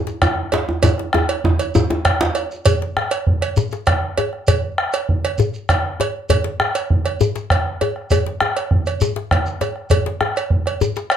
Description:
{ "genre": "west african traditional, West African drum ensemble", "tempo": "132 BPM (dotted quarters)", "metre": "12/8", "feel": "straight", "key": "none", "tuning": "none", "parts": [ { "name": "djembe", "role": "percussion", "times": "0.1-11.1 s", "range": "none", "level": "-20 LUFS", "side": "left 6 dB", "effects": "none" }, { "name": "shekere", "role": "percussion", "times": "0.1-11.2 s", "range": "none", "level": "-26 LUFS", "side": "right 1 dB", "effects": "none" }, { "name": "bombo", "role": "percussion", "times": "0.2-11.2 s", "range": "none", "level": "-19 LUFS", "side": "right 1 dB", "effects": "none" }, { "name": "cowbell", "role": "percussion", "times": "0.2-11.2 s", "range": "none", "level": "-22 LUFS", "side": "right 6 dB", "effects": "none" }, { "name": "djembe", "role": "percussion", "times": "0.2-2.3 s", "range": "none", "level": "-20 LUFS", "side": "right 2 dB", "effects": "none" } ], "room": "moderate studio reverb, RT60 0.5 s", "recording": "none", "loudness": "-17 LUFS", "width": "side -9 dB against mid", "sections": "0.0-2.7 A section; 2.7-11.2 B section", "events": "drum fill 0.8-2.7", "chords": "none", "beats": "0.38 | 0.84 1.29 1.75 2.21 | 2.66 3.12 3.57 4.03 | 4.48 4.94 5.39 5.84 | 6.30 6.75 7.20 7.66 | 8.11 8.56 9.01 9.46 | 9.91 10.37 10.82" }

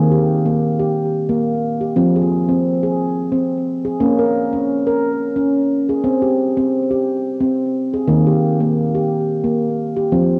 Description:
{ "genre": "world meditative, meditative tuned percussion", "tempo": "88 BPM", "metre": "3/4", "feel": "swing 55% on 16ths", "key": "unclear", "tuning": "A4 = 441 Hz", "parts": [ { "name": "handpan", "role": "solo", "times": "0.0-10.4 s", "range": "Eb3 to Bb4", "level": "-18 LUFS", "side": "equal", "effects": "cassette tape, tape echo" } ], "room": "moderate studio reverb, RT60 0.6 s", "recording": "home recording on cassette", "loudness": "-18 LUFS", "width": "mono", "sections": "0.0-10.1 A section", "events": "none", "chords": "0.0 Eb; 2.0 Fm; 4.0 Bbm; 6.0 C5; 8.1 Eb", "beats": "0.60 1.28 | 1.97 2.65 3.33 | 4.00 4.68 5.37 | 6.04 6.72 7.41 | 8.09 8.77 9.44 | 10.12" }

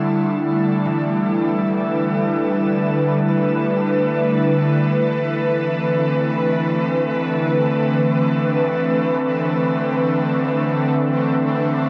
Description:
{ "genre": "ambient", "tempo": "free time", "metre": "none", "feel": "none", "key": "unclear", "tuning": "A4 = 442 Hz", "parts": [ { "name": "airy breathy pad", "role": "sustained chords", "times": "0.0-11.9 s", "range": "E3 to B4", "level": "-21 LUFS", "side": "equal", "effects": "chorus" }, { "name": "organ-like drone", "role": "drone", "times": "0.0-11.9 s", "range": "D3 to A3", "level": "-24 LUFS", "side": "equal", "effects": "ensemble chorus, built-in reverb" }, { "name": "concert harp", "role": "arpeggios", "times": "0.9-6.2 s", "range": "E3 to B4", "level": "-36 LUFS", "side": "equal", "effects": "none" } ], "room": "wet shimmer reverb, RT60 8.2 s", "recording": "worn, warbling old tape, cassette tape, warbly pitch drift", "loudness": "-19 LUFS", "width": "mono", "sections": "0.0-11.9 A section", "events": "none", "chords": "0.0 Em7; 4.9 Cmaj9", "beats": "free time" }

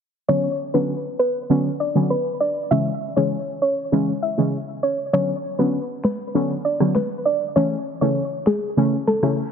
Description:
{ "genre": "dancehall", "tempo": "99 BPM", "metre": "4/4", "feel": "straight", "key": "B dorian", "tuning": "A4 = 440 Hz", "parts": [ { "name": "soft round pluck", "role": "melody", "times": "0.3-9.2 s", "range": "G#4 to E5", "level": "-23 LUFS", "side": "equal", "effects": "chorus, tape echo" }, { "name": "synth brass stab", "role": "accompaniment", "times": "0.3-9.4 s", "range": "C#3 to C#4", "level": "-21 LUFS", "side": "equal", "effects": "chorus" }, { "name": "electronic finger snaps, snare drum and rim click", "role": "drums", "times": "6.0-9.4 s", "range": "none", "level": "-23 LUFS", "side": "equal", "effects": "none" } ], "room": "moderate lush hall reverb, RT60 2.1 s", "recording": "heavily compressed radio sound, multiband compression, low-pass filter", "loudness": "-19 LUFS", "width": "side -7 dB against mid", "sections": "0.3-9.5 A section", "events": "none", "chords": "0.3 Bmadd9; 2.7 C#m; 5.1 Bmadd9; 7.6 A", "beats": "| 0.29 0.89 1.50 2.10 | 2.71 3.32 3.92 4.53 | 5.13 5.74 6.35 6.95 | 7.56 8.16 8.77 9.38" }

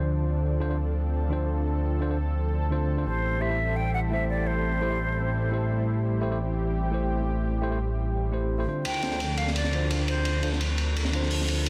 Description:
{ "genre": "liquid drum and bass", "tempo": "171 BPM", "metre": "4/4", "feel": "straight", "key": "D minor", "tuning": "A4 = 440 Hz", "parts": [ { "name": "tine electric piano", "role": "accompaniment", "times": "0.0-11.7 s", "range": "D3 to C5", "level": "-34 LUFS", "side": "equal", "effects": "delay" }, { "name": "lush unison pad", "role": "sustained chords", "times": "0.0-11.7 s", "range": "F3 to A4", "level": "-37 LUFS", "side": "equal", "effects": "chorus" }, { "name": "smooth synth bass", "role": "bass", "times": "0.0-11.7 s", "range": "A1 to D2", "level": "-29 LUFS", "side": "equal", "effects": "none" }, { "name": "silver concert flute", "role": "melody", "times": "3.1-5.5, 8.9-10.6 s", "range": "C5 to G5", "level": "-35 LUFS", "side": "equal", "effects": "delay" }, { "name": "crunchy breakbeat drum kit", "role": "drums", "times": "8.8-11.7 s", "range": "hi-hat, ride cymbal, snare drum", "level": "-32 LUFS", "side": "equal", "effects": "high-pass filter on cymbals, high-pass filter on hats, high-pass filter on snare, high-pass filter on room" } ], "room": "light reverb, studio ambience", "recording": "dense, heavily limited modern master", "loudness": "-27 LUFS", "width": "mono", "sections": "0.0-11.7 A section", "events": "none", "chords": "0.0 Dm7; 3.1 Am7; 8.9 Dm7", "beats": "0.08 | 0.43 0.78 1.13 1.49 | 1.84 2.19 2.54 2.89 | 3.24 3.59 3.94 4.29 | 4.64 4.99 5.34 5.70 | 6.05 6.40 6.75 7.10 | 7.45 7.80 8.15 8.50 | 8.85 9.20 9.55 9.91 | 10.26 10.61 10.96 11.31 | 11.66" }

